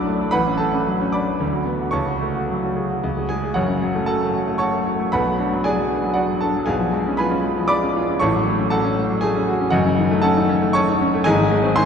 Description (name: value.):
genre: classical, virtuoso piano study.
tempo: 117 BPM.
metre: 3/4.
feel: rubato.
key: F# minor.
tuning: A4 = 438 Hz.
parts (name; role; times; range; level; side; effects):
clear grand piano; solo; 0.0-11.9 s; F#1 to F#6; -17 LUFS; equal; none.
room: wet cathedral reverb, RT60 6.2 s.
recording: dark, warm production.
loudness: -18 LUFS.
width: side -7 dB against mid.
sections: 0.0-3.6 A section; 3.6-11.9 B section.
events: none.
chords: 0.3 F#m/A; 1.4 Bm/D; 2.0 F#m/C#; 3.0 C#5; 3.6 F#m; 5.1 Bm; 6.7 C#7/B; 8.2 F#m/A; 9.7 D#m7b5/F#; 11.3 G#.